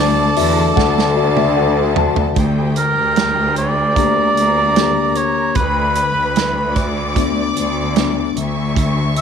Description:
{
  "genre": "pop ballad",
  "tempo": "75 BPM",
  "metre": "4/4",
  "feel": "straight",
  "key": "unclear",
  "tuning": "A4 = 439 Hz",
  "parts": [
    { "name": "warm oboe", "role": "melody", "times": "0.0-9.2 s", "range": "Bb4 to E5", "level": "-18 LUFS", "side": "right 2 dB", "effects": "none" },
    { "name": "warm studio violin section", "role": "second line", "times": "0.0-9.2 s", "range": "G4 to D6", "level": "-23 LUFS", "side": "left 1 dB", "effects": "none" },
    { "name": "tine electric piano", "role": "accompaniment", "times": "0.0-9.2 s", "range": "D3 to A5", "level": "-20 LUFS", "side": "left 15 dB", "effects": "none" },
    { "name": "rich studio cello section", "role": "bass", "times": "0.0-9.2 s", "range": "D2 to E2", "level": "-20 LUFS", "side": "right 1 dB", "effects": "none" },
    { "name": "natural country drum kit", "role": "drums", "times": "0.4-9.2 s", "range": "hi-hat, kick drum, snare drum, toms", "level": "-20 LUFS", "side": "right 5 dB", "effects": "none" }
  ],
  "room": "light reverb, small room ambience",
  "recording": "1960s-style stereo",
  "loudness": "-14 LUFS",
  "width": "side -7 dB against mid",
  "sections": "0.0-2.4 A section; 2.4-9.2 B section",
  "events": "tine electric piano fill 0.0-2.4; drum fill 0.8-2.4",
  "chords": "0.0 D; 2.4 Gm/D; 5.6 Bm/D; 8.4 F#7(no3)/D (rootless)"
}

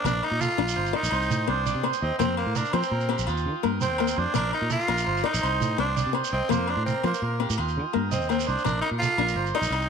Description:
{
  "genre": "highlife guitar band",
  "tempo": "112 BPM (dotted quarters)",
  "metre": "12/8",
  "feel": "straight",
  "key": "Bb major",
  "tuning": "A4 = 442 Hz",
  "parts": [
    { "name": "growling tenor saxophone", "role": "melody", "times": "0.0-9.9 s", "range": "Bb3 to F4", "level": "-28 LUFS", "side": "right 1 dB", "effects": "none" },
    { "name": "combo organ", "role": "sustained chords", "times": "0.0-9.9 s", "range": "F5 to Eb6", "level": "-38 LUFS", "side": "left 8 dB", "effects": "none" },
    { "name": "clean electric guitar", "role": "arpeggios", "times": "0.0-9.8 s", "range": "F4 to Eb5", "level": "-31 LUFS", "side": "right 9 dB", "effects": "warbly pitch drift" },
    { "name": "fingered electric bass", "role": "bass", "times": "0.0-9.9 s", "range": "G1 to F3", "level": "-29 LUFS", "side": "equal", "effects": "none" },
    { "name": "nylon-string guitar", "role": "accompaniment", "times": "0.1-9.8 s", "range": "Bb3 to D5", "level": "-31 LUFS", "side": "left 12 dB", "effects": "none" },
    { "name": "agogo bells", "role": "percussion", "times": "0.1-9.9 s", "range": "none", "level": "-36 LUFS", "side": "left 12 dB", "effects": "none" },
    { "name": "shekere", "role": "percussion", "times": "0.1-9.9 s", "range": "none", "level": "-33 LUFS", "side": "right 8 dB", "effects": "none" }
  ],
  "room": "moderate echo chamber reverb, RT60 1.7 s, small room ambience",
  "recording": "1960s-style stereo with parts hard left and right",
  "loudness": "-23 LUFS",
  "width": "side -6 dB against mid",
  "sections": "0.0-9.9 A section",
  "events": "none",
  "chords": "0.0 Bbadd9; 1.1 Cm; 2.2 Fsus4; 3.3 Ebadd9; 4.4 Bbadd9; 5.4 Cm; 6.5 Fsus4; 7.6 Ebadd9; 8.6 Bbadd9"
}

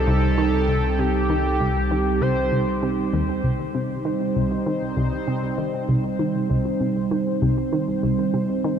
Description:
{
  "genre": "ambient, sequencer-driven space music",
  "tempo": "98 BPM",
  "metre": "4/4",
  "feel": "straight",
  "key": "C dorian",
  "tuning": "A4 = 440 Hz",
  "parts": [
    { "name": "pulse-width lead", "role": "melody", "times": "0.0-3.1 s", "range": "G4 to C5", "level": "-27 LUFS", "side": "equal", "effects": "chorus, tape echo" },
    { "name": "sweeping resonant pad", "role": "sustained chords", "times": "0.0-8.8 s", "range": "G3 to C5", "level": "-24 LUFS", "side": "right 3 dB", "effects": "chorus" },
    { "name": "warm sub bass", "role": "bass", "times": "0.0-3.4 s", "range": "C2", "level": "-25 LUFS", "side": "left 1 dB", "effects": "none" },
    { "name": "analog pluck", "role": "riff", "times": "0.1-8.8 s", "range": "C2 to Eb3", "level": "-24 LUFS", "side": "equal", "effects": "chorus, tape echo" }
  ],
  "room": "wet huge ambient reverb, RT60 7.4 s",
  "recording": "dark, warm production",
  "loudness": "-20 LUFS",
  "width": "side -8 dB against mid",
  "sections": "0.0-3.4 A section; 3.4-8.8 B section",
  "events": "none",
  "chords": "0.0 Cm"
}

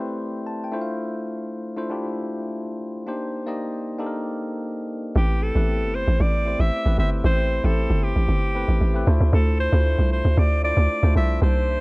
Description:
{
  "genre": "amapiano",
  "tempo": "115 BPM",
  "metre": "4/4",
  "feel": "straight",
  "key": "A minor",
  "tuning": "A4 = 440 Hz",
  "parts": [
    { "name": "tine electric piano", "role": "accompaniment", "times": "0.0-11.8 s", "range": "A3 to A5", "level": "-28 LUFS", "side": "left 1 dB", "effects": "low-pass filter" },
    { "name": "breathy alto saxophone", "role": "melody", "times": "5.2-11.8 s", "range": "G4 to E5", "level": "-26 LUFS", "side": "equal", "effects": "none" },
    { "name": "hollow log drum bass", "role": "bass", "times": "5.2-11.8 s", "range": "G1 to D2", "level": "-19 LUFS", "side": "equal", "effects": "none" }
  ],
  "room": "little or no reverb",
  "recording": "worn, warbling old tape, cassette tape, warbly pitch drift",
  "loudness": "-20 LUFS",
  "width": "side -26 dB against mid",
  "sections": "0.0-5.2 A section; 5.2-11.8 B section",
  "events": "tine electric piano fill 0.2-1.0; drop 5.2-11.8",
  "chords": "0.0 Am9; 0.7 Dm9; 3.1 Cm9; 5.2 Am9; 9.1 Dm9"
}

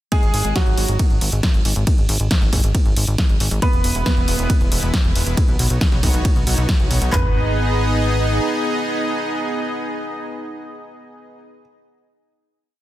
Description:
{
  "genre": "uplifting trance",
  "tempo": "137 BPM",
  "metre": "4/4",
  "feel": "straight",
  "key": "G# minor",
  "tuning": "A4 = 440 Hz",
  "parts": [
    { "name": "bright baby grand piano", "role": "second line", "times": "0.1-1.0, 3.6-4.5, 7.1-11.6 s", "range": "F#3 to B4", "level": "-26 LUFS", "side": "right 2 dB", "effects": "tape echo" },
    { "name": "punchy analog drum machine", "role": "drums", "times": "0.1-7.1 s", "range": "hi-hat, ride cymbal, snare drum", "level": "-24 LUFS", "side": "right 1 dB", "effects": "overdrive, studio reverb" },
    { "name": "techno drum kit", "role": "drums", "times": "0.1-7.2 s", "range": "handclaps, kick drum, toms", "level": "-18 LUFS", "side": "equal", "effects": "studio reverb" },
    { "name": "plucky analog bass", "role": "bass", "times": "0.2-8.4 s", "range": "E1 to B1", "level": "-20 LUFS", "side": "equal", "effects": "sidechain pumping" },
    { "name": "supersaw pad", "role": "sustained chords", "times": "3.8-11.4 s", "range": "G#3 to D#5", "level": "-23 LUFS", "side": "equal", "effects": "sidechain pumping" }
  ],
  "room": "light reverb, digital ambience",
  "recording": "dense, heavily limited modern master",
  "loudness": "-16 LUFS",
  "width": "side -14 dB against mid",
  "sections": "0.1-7.1 drop; 7.1-10.6 final chord",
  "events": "drop 0.1-7.1",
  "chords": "0.1 F#sus2/G#; 3.6 E; 5.4 Badd9; 7.1 G#m"
}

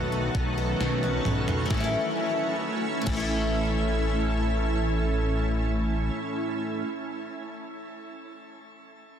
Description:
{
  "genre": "dream pop",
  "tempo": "66 BPM",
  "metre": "4/4",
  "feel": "straight",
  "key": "A lydian",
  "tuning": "A4 = 440 Hz",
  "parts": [
    { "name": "warbly nostalgic lead", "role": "melody", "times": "0.0-0.8 s", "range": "A5", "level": "-48 LUFS", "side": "equal", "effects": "none" },
    { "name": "shimmering ambient pad", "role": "sustained chords", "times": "0.0-6.1 s", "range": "D#3 to F#4", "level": "-30 LUFS", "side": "right 2 dB", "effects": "chorus, built-in reverb" },
    { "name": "picked twelve-string acoustic guitar", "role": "arpeggios", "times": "0.0-6.9 s", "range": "A2 to A4", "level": "-31 LUFS", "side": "left 2 dB", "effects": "lush chorus, digital delay" },
    { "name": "chorused synth bass", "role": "bass", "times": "0.0-6.1 s", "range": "A1 to B1", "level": "-28 LUFS", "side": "equal", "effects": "none" },
    { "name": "gated 80s digital drum machine", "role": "drums", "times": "0.3-3.3 s", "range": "crash cymbal, kick drum, snare drum, toms", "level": "-32 LUFS", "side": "equal", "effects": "gated reverb, gated reverb snare, overdrive" }
  ],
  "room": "moderate shimmer reverb, RT60 7.1 s",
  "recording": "dense, heavily limited modern master",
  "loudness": "-24 LUFS",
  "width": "side -8 dB against mid",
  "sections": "0.0-1.7 A section; 1.7-5.3 B section",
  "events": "drum fill 0.8-1.7",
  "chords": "0.0 B7; 1.7 A"
}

